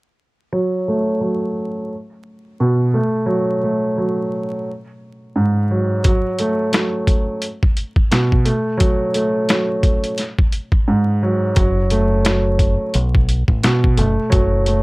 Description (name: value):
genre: hip hop, boom-bap hip-hop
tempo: 87 BPM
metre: 4/4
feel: swing 58% on 16ths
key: F# minor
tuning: A4 = 439 Hz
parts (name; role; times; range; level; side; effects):
- dark upright piano; accompaniment; 0.5-14.8 s; G#2 to A3; -17 LUFS; right 1 dB; cassette tape, low-pass filter
- boom bap sampler-style drum kit; drums; 6.0-14.8 s; hi-hat, kick drum, snare drum; -16 LUFS; equal; none
- deep dub fingered electric bass; bass; 11.6-14.8 s; F#1 to B1; -18 LUFS; equal; none
room: light reverb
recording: vinyl crackle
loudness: -15 LUFS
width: side -23 dB against mid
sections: 0.5-11.6 A section; 11.6-14.8 B section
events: filter sweep on upright piano 0.5-11.6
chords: 0.5 F#m; 1.9 N.C.; 2.9 F#m; 4.7 F#sus2/G#; 6.0 F#m; 7.4 N.C.; 8.5 F#m; 10.2 F#sus2/G#; 11.6 F#m; 12.9 Asus2; 14.0 F#m